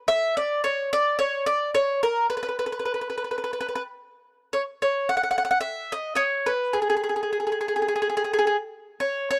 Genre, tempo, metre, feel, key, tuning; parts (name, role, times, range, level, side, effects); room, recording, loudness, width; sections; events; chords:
italian folk; 108 BPM; 4/4; rubato; B minor; A4 = 439 Hz
mandolin; solo; 0.1-9.4 s; G#4 to F#5; -25 LUFS; equal
studio ambience; dry, close 1970s-style studio recording; -25 LUFS; mono
0.0-4.5 A section; 4.5-9.4 B section